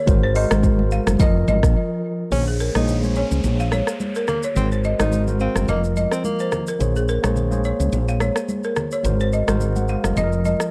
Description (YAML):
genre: afrobeats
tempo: 107 BPM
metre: 4/4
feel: swing 55% on 16ths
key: Bb minor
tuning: A4 = 439 Hz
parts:
  - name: mellow tine electric piano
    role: accompaniment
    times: 0.0-10.7 s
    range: F3 to Gb5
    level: -28 LUFS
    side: equal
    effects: none
  - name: woody fretless electric bass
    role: bass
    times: 0.1-10.5 s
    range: F1 to Db2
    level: -23 LUFS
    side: equal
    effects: none
  - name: afro-pop drum kit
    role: drums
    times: 0.1-10.7 s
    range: hi-hat, kick drum, rim click, shaker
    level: -25 LUFS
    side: equal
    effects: none
  - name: congas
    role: percussion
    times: 0.1-10.6 s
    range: none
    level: -31 LUFS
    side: equal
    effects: none
  - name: balafon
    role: riff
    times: 0.2-10.5 s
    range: Ab4 to F5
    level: -29 LUFS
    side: equal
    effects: tape echo
  - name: breathy tenor saxophone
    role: melody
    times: 2.3-6.7 s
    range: Bb3 to Eb4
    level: -30 LUFS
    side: equal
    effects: tape echo
  - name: downlifter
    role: sound effects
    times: 2.3-6.8 s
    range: none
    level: -40 LUFS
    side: equal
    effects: none
room: little or no reverb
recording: dry, gritty hardware recording, cassette tape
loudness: -20 LUFS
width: mono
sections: 0.0-2.3 A section; 2.3-10.7 B section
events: break 1.8-2.3, 2.3-10.7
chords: 0.1 Ab9; 1.2 F7sus4; 2.3 Bbm9; 4.6 Ab9; 5.7 F7sus4; 6.8 Bbm9; 9.0 Ab9; 10.2 F7sus4